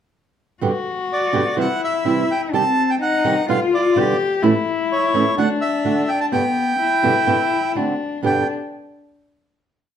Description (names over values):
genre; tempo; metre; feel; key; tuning
tango; 126 BPM; 4/4; rubato; G major; A4 = 439 Hz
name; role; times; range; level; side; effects
dark cello; second line; 0.6-8.5 s; B3 to G4; -21 LUFS; left 5 dB; none
flamenco guitar; accompaniment; 0.6-8.4 s; G2 to G4; -20 LUFS; right 4 dB; none
bandoneon; melody; 1.1-8.5 s; C#5 to A5; -20 LUFS; right 1 dB; none
room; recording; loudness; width
moderate large studio reverb, RT60 0.8 s; none; -16 LUFS; side -9 dB against mid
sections
0.6-8.2 A section; 8.2-10.0 final chord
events
none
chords
0.6 G; 1.6 C; 2.5 Cm; 3.5 G7/B; 4.4 A; 5.4 D; 6.3 G; 7.8 D7; 8.2 G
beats
| 0.62 1.10 1.58 2.05 | 2.53 3.01 3.49 3.96 | 4.43 4.91 5.38 5.85 | 6.33 6.80 7.28 7.76 | 8.24